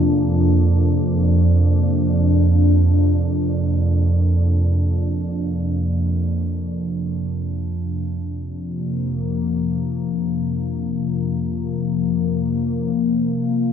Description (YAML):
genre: ambient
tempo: free time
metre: none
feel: none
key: unclear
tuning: A4 = 438 Hz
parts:
  - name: warm analog pad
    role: solo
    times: 0.0-13.7 s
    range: F2 to D4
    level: -17 LUFS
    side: equal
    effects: chorus, phaser, tape echo
room: moderate spring reverb, RT60 2.3 s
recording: echo-heavy mix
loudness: -18 LUFS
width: side -8 dB against mid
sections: 0.0-12.9 A section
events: none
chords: 0.0 Bbadd9/F; 12.9 F5